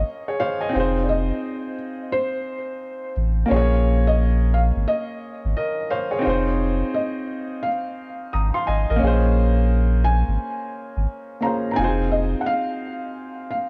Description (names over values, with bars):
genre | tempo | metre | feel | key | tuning
hip hop | 87 BPM | 4/4 | swing 63% on 16ths | Bb minor | A4 = 439 Hz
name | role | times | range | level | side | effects
felt-muted upright piano | melody | 0.0-13.7 s | C5 to Bb5 | -29 LUFS | equal | low-pass filter, analog delay
warm upright piano | accompaniment | 0.0-13.7 s | Bb3 to Eb6 | -27 LUFS | equal | cassette tape, low-pass filter
warm sub bass | bass | 0.0-12.3 s | F1 to Bb1 | -22 LUFS | equal | none
room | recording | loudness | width
light reverb | echo-heavy mix | -22 LUFS | mono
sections
0.0-13.7 A section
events
none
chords
0.0 Bbm7; 0.7 Fm7; 3.5 Bbm7; 6.3 Fm7; 9.0 Bbm7; 11.8 Fm7